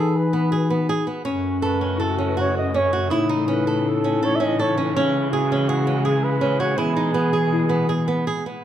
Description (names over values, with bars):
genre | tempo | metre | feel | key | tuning
contemporary instrumental, chamber music in an uneven meter | 163 BPM | 5/4 | straight | unclear | A4 = 440 Hz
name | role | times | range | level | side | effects
breathy flugelhorn | melody | 0.0-8.3 s | F#4 to E5 | -25 LUFS | right 2 dB | none
vibraphone with medium hard mallets | second line | 0.0-8.4 s | B3 to D#4 | -26 LUFS | left 2 dB | none
flamenco guitar | arpeggios | 0.0-8.6 s | B3 to A4 | -25 LUFS | right 4 dB | none
breathy bass clarinet | bass | 0.0-8.5 s | F#2 to E3 | -24 LUFS | left 2 dB | none
worn celesta | texture | 0.0-8.2 s | C#4 to B4 | -32 LUFS | left 5 dB | none
warm studio string section | sustained chords | 1.3-8.6 s | B2 to F#4 | -28 LUFS | equal | none
room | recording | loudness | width
moderate recital hall reverb, RT60 1.4 s | dark, warm production | -18 LUFS | side -10 dB against mid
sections
0.0-8.6 A section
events
none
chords
0.0 E; 1.3 F#m; 3.1 A; 5.0 C#m; 6.8 E